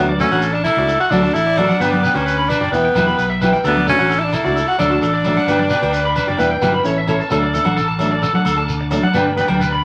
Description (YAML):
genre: highlife guitar band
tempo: 131 BPM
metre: 4/4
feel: straight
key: D major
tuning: A4 = 440 Hz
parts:
  - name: clear tenor saxophone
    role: melody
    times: 0.0-6.8 s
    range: B3 to F#4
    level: -21 LUFS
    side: equal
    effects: none
  - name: flamenco guitar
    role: accompaniment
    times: 0.0-9.6 s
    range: E3 to A4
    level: -23 LUFS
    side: equal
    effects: none
  - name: bright tonewheel organ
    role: sustained chords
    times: 0.0-9.8 s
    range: D5 to E6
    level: -36 LUFS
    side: equal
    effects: none
  - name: fingered electric bass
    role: bass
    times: 0.0-9.8 s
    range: E1 to D2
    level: -25 LUFS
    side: equal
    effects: none
  - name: electric guitar at the edge of break-up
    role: arpeggios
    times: 0.1-9.8 s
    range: A4 to B5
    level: -22 LUFS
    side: equal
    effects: none
  - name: congas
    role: percussion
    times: 0.1-9.6 s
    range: none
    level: -24 LUFS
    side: equal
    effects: none
  - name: shekere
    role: percussion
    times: 0.2-9.7 s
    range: none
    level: -32 LUFS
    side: equal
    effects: none
  - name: agogo bells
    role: percussion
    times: 0.3-9.6 s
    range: none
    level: -31 LUFS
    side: equal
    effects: none
room: wet studio reverb, RT60 0.6 s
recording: vinyl crackle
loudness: -16 LUFS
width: mono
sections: 0.0-7.3 A section; 7.3-9.8 B section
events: none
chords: 0.0 D; 1.8 G; 2.7 Em; 3.6 D; 5.5 G; 6.4 Em; 6.9 A; 7.3 D; 9.1 G